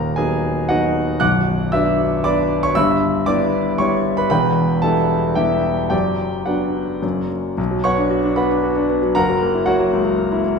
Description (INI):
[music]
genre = classical, virtuoso piano study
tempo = 115 BPM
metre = 3/4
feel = rubato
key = B minor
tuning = A4 = 438 Hz
[part]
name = warm concert grand piano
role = solo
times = 0.0-10.6 s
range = B0 to F#6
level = -16 LUFS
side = equal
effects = none
[sound]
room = wet recital hall reverb, RT60 1.3 s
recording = recorded in a church or concert hall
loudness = -16 LUFS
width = side -5 dB against mid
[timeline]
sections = 0.0-7.6 A section; 7.6-10.6 B section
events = none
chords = 0.0 B/D#; 1.2 Bm; 2.8 Em/G; 4.3 Em; 5.9 Bm/F#; 7.0 F#; 7.6 Bm; 9.2 F#7